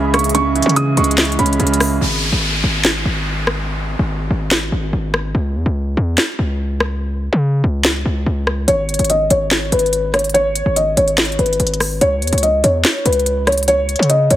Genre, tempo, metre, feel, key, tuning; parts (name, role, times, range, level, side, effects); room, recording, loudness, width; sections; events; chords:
hip hop, trap; 144 BPM; 4/4; half-time; A4 = 441 Hz
felt-muted upright piano; melody; 0.0-2.0, 8.7-14.4 s; B4 to D#6; -16 LUFS; equal; ping-pong delay
bright grand piano; accompaniment; 0.0-2.0 s; C#3 to C#4; -18 LUFS; right 3 dB
dark analog pad; sustained chords; 0.0-2.0 s; C#3 to E5; -25 LUFS; right 2 dB; chorus
hard-hitting 808-style bass; bass; 0.0-14.4 s; G#1 to C#3; -18 LUFS; equal
trap drum kit; drums; 0.1-14.4 s; handclaps, hi-hat, rim click, snare drum; -18 LUFS; equal
downlifter; sound effects; 2.0-5.3 s; -23 LUFS; equal
light reverb; heavily compressed radio sound; -14 LUFS; side -13 dB against mid
0.0-2.0 A section; 2.0-14.4 B section
break 2.0-8.7
0.0 C#m; 2.0 N.C.; 8.7 G#m; 12.0 C#m